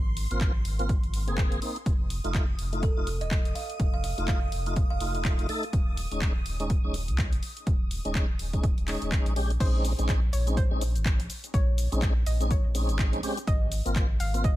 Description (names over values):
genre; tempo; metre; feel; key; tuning
deep house; 124 BPM; 4/4; swing 58% on 16ths; Bb minor; A4 = 441 Hz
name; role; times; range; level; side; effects
round analog bass; bass; 0.0-14.5 s; Eb1 to Db2; -29 LUFS; equal; sidechain pumping
string machine, violins; texture; 0.0-9.6 s; C6 to Eb6; -44 LUFS; equal; ensemble chorus, sidechain pumping
house drum kit; drums; 0.2-14.6 s; crash cymbal, handclaps, hi-hat, shaker; -37 LUFS; left 1 dB; studio ambience
tonewheel organ; stabs; 0.3-14.5 s; Ab3 to A4; -34 LUFS; equal; chorus vibrato, slow rotary speaker, sidechain pumping, digital delay
electronic kick drum; drums; 0.4-14.6 s; none; -26 LUFS; equal; overdrive, studio ambience
kalimba; melody; 2.8-5.4 s; A4 to F5; -37 LUFS; right 5 dB; ping-pong delay
soft round pluck; melody; 9.6-14.6 s; C5 to F5; -38 LUFS; equal; chorus, digital delay
room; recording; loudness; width
digital ambience; none; -25 LUFS; side -15 dB against mid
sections
0.0-9.6 A section; 9.6-14.6 B section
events
drop 9.6-14.6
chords
0.0 Ab69; 1.9 F7; 5.7 Eb7sus4; 9.6 Bbm11; 13.5 Ab69